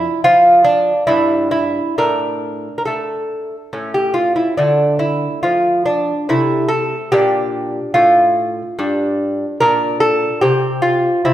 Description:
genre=classical, baroque-style dance for lute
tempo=71 BPM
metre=3/4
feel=rubato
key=D minor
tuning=A4 = 440 Hz
part: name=lute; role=solo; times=0.0-11.3 s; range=G2 to Bb4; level=-13 LUFS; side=equal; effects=none
room=wet recital hall reverb, RT60 1.5 s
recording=recorded in a church or concert hall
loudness=-13 LUFS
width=side -12 dB against mid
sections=0.0-11.3 A section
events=none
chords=0.0 N.C.; 1.1 Em7/G; 2.0 D5/A; 3.7 A; 4.6 Dm; 6.3 Am/C; 7.1 Bb; 8.8 G5; 9.6 Bbmaj7; 10.4 N.C.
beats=0.24 1.08 | 1.97 2.85 3.71 | 4.57 5.43 6.28 | 7.12 7.95 8.79 | 9.61 10.43 11.27

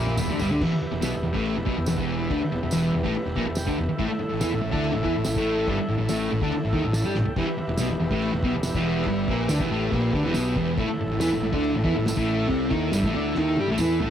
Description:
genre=garage rock duo or trio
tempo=142 BPM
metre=4/4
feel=straight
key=E minor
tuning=A4 = 440 Hz
part: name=overdriven combo organ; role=sustained chords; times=0.0-14.1 s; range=E4 to B5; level=-31 LUFS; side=right 1 dB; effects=lush chorus, cassette tape
part: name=fuzz guitar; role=riff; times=0.0-14.1 s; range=E2 to G4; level=-24 LUFS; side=equal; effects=distortion, cassette tape
part: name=fuzz fingered electric bass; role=bass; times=0.0-14.1 s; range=E1 to G2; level=-30 LUFS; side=equal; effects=overdrive
part: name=cloth-damped thuddy drum kit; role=drums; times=0.1-14.1 s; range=crash cymbal, kick drum, snare drum, toms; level=-32 LUFS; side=equal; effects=none
part: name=tambourine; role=percussion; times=0.2-13.9 s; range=none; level=-37 LUFS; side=right 4 dB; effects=none
room=light reverb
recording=home recording on cassette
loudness=-22 LUFS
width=side -10 dB against mid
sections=0.6-14.1 A section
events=drum fill 0.0-0.6, 7.2, 13.4-14.1; transistor combo organ fill 3.2-4.0, 6.7-7.4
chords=0.0 Em; 4.0 A5; 7.4 Em; 10.8 A5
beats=0.19 | 0.61 1.03 1.46 1.88 | 2.31 2.73 3.15 3.58 | 4.00 4.42 4.84 5.26 | 5.69 6.11 6.53 6.96 | 7.38 7.80 8.22 8.65 | 9.07 9.50 9.93 10.35 | 10.78 11.21 11.64 12.07 | 12.50 12.93 13.36 13.79

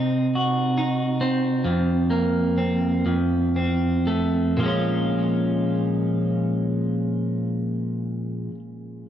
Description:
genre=pop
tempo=36-48 BPM (dotted quarters)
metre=6/8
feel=straight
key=Bb minor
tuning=A4 = 438 Hz
part: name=twelve-string electric guitar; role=solo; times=0.0-8.6 s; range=F2 to Gb4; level=-21 LUFS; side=equal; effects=digital delay
room=light reverb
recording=worn, warbling old tape, cassette tape, warbly pitch drift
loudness=-21 LUFS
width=side -10 dB against mid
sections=0.0-4.6 A section; 4.6-7.9 B section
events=slowing down 0.0-4.6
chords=0.0 Cdim; 1.7 Fsus4; 3.0 F; 4.6 Bbm7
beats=0.35 | 1.65 3.05 | 4.60 6.24

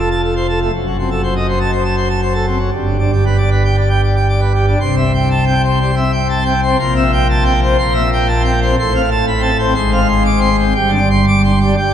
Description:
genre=classical, organ toccata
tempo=120 BPM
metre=4/4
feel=straight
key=unclear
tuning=A4 = 440 Hz
part: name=pipe organ, plenum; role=solo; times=0.0-11.9 s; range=F1 to D6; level=-12 LUFS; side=equal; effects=none
room=wet church reverb, RT60 3.0 s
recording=minimal, uncompressed stereo recording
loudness=-12 LUFS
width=side -9 dB against mid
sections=0.0-4.8 A section; 4.8-11.9 B section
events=none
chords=0.0 Dm7/F (rootless); 0.7 F#dim7; 2.7 G; 4.8 C; 6.8 C7/Bb; 8.8 F/A; 9.8 Fm/Ab; 10.8 Gsus4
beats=0.23 | 0.72 1.22 1.72 2.22 | 2.73 3.25 3.77 4.29 | 4.80 5.30 5.80 6.30 | 6.80 7.29 7.79 8.29 | 8.78 9.27 9.76 10.26 | 10.76 11.27 11.77

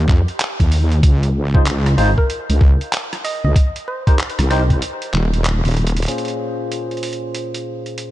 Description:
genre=glitch hop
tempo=95 BPM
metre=4/4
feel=swing 63% on 16ths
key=Bb dorian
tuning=A4 = 440 Hz
part: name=woody wave-folded pluck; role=melody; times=0.0-4.4 s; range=G4 to Eb5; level=-29 LUFS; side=right 1 dB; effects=chorus, cassette tape, ping-pong delay
part: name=wobble bass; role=bass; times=0.0-6.1 s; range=Eb1 to F2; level=-15 LUFS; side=equal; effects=chorus
part: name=boom bap sampler-style drum kit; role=drums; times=0.1-8.1 s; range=handclaps, hi-hat, rim click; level=-25 LUFS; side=right 1 dB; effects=none
part: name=electronic kick drum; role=drums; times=0.1-4.8 s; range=none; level=-13 LUFS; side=equal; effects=none
part: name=barky tine electric piano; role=stabs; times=1.5-8.1 s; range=Bb2 to C5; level=-25 LUFS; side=left 1 dB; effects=lush chorus, sidechain pumping, low-pass filter, ping-pong delay
room=light reverb, digital ambience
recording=nothing above 10.4 kHz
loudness=-15 LUFS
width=side -15 dB against mid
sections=0.0-6.1 A section; 6.1-8.1 B section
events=drop 0.0-6.1; break 4.8-6.1; drum fill 5.8-6.1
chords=0.0 Cm (rootless); 1.0 Db5; 3.6 Cm7; 4.8 N.C.; 6.1 Bbm7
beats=0.40 | 1.03 1.66 2.29 2.93 | 3.56 4.19 4.82 5.45 | 6.08 6.72 7.35 7.98

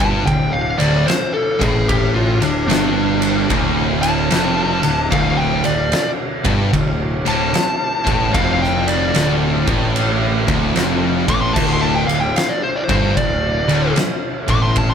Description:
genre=stoner and doom metal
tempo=75 BPM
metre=4/4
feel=swing 65% on 8ths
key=D minor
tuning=A4 = 443 Hz
part: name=fuzz lead guitar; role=melody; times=0.0-14.9 s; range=D4 to D6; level=-21 LUFS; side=left 2 dB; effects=distortion, ping-pong delay
part: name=organ-like drone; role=sustained chords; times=0.4-14.9 s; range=D3 to E4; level=-32 LUFS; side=left 2 dB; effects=none
part: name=high-gain distorted guitar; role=riff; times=0.0-14.9 s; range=D2 to A2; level=-23 LUFS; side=equal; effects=distortion
part: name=thick fuzz guitar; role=riff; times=0.0-14.9 s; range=D2 to A2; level=-23 LUFS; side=left 7 dB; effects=distortion
part: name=thick fuzz guitar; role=riff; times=0.0-14.9 s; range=D2 to A2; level=-22 LUFS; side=right 7 dB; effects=distortion
part: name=fuzz picked electric bass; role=bass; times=0.0-14.9 s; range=D1 to A1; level=-23 LUFS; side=equal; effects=overdrive, tube saturation
part: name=oversized low-tuned drum kit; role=drums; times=0.0-14.9 s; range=crash cymbal, kick drum, ride cymbal, snare drum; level=-20 LUFS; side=equal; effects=none
room=light reverb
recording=none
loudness=-14 LUFS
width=side -7 dB against mid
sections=0.0-14.9 A section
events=lead electric guitar solo 0.0-14.9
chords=0.0 Dm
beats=0.28 1.09 | 1.90 2.70 3.51 4.32 | 5.12 5.93 6.73 7.54 | 8.34 9.15 9.95 10.75 | 11.55 12.36 13.16 13.96 | 14.76

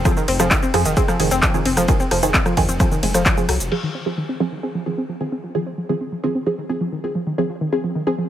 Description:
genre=driving peak-time techno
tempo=131 BPM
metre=4/4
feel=straight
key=F minor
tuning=A4 = 440 Hz
part: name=dark detuned saw bass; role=bass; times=0.0-3.7 s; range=F1 to F2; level=-24 LUFS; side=equal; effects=sidechain pumping
part: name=warbly dusty pluck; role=riff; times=0.1-8.3 s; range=Eb3 to C4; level=-22 LUFS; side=equal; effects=chorus, tube saturation, sidechain pumping, tape echo
part: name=filtered dub chord stab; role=stabs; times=0.1-8.2 s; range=F3 to Ab4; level=-24 LUFS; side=right 2 dB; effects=phaser, wide subtle chorus, sidechain pumping, tape echo
part: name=electronic kick drum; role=drums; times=0.1-3.4 s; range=none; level=-19 LUFS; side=equal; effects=none
part: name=techno drum kit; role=drums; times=0.1-3.8 s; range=crash cymbal, handclaps, hi-hat, ride cymbal, rim click, shaker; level=-22 LUFS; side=left 1 dB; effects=sidechain pumping on perc, low-pass filter on perc, low-pass filter on snare, sidechain pumping on hats, low-pass filter on hats, sidechain pumping on cymbals, low-pass filter on cymbals, low-pass filter on room
room=light reverb, digital ambience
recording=none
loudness=-17 LUFS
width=side -11 dB against mid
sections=0.0-3.7 A section; 3.7-8.3 B section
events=drop 0.0-3.7; filter sweep on synth arpeggio sound 3.7-8.3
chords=0.0 Fm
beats=| 0.05 0.51 0.97 1.43 | 1.89 2.34 2.80 3.26 | 3.72 4.17 4.63 5.09 | 5.55 6.01 6.46 6.92 | 7.38 7.84

